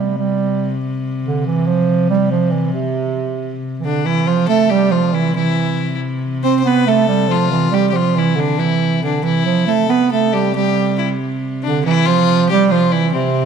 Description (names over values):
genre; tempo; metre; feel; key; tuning
medieval dance; 92 BPM (dotted quarters); 6/8; straight; C major; A4 = 442 Hz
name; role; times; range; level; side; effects
dark bass clarinet; melody; 0.0-13.5 s; C3 to C4; -15 LUFS; right 5 dB; none
warm viola da gamba; drone; 0.0-13.5 s; C3; -23 LUFS; left 2 dB; none
rich fiddle; second line; 3.8-13.5 s; C4 to C5; -20 LUFS; left 10 dB; none
room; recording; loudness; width
wet echo chamber reverb, RT60 2.1 s; 1960s-style stereo; -14 LUFS; side -7 dB against mid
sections
0.0-4.1 A section; 4.1-13.5 A section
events
none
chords
none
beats
| 0.16 0.81 | 1.46 2.11 | 2.76 3.41 | 4.06 4.71 | 5.36 6.01 | 6.66 7.31 | 7.96 8.60 | 9.25 9.90 | 10.55 11.20 | 11.85 12.49 | 13.14